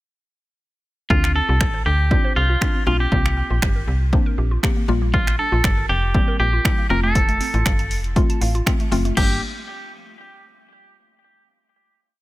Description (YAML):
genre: dance-pop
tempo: 119 BPM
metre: 4/4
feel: straight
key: G minor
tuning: A4 = 440 Hz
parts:
  - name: clean electric guitar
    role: melody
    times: 1.1-9.4 s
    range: F4 to Bb4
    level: -23 LUFS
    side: equal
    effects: tape echo
  - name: mallet-like synth pluck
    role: accompaniment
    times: 1.1-9.4 s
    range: G3 to G4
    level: -27 LUFS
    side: left 4 dB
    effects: chorus, sidechain pumping
  - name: hollow square pluck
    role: arpeggios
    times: 1.1-9.4 s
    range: F3 to C6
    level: -32 LUFS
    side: right 3 dB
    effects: chorus, sidechain pumping, tape echo
  - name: slap-like FM bass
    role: bass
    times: 1.1-9.4 s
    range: F1 to D2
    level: -20 LUFS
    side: equal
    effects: sidechain pumping
  - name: punchy analog drum machine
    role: drums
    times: 1.1-9.3 s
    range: crash cymbal, finger snaps, hi-hat, kick drum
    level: -20 LUFS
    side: equal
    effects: none
room: little or no reverb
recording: none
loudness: -16 LUFS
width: side -18 dB against mid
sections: 1.1-9.2 pre-chorus; 9.2-11.2 final chord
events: none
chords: 1.1 Dm7; 3.1 C7sus4; 4.9 Gm7; 6.9 F; 9.2 Gm